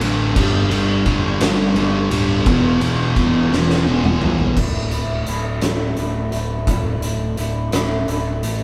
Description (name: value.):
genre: quiet-loud alternative rock.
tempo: 57 BPM (dotted quarters).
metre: 6/8.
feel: straight.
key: unclear.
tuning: A4 = 441 Hz.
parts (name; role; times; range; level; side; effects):
sludgy distorted guitar; riff; 0.0-4.6 s; D2 to G3; -23 LUFS; equal; overdrive.
sludgy distorted guitar; riff; 0.0-4.5 s; D2 to G3; -22 LUFS; equal; overdrive.
fuzz picked electric bass; bass; 0.0-8.6 s; D1 to B1; -26 LUFS; equal; overdrive.
oversized low-tuned drum kit; drums; 0.0-8.6 s; crash cymbal, hi-hat, kick drum, ride cymbal, snare drum, toms; -23 LUFS; equal; none.
electric guitar through a small old amp; arpeggios; 4.6-8.6 s; D2 to E4; -29 LUFS; equal; phaser.
room: moderate small room reverb, RT60 0.5 s.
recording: band playing live in one room.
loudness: -18 LUFS.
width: mono.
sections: 0.0-4.6 A section; 4.6-8.6 B section.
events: drum fill 3.5-4.6.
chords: 0.4 G5; 2.5 E5; 4.6 Dsus2.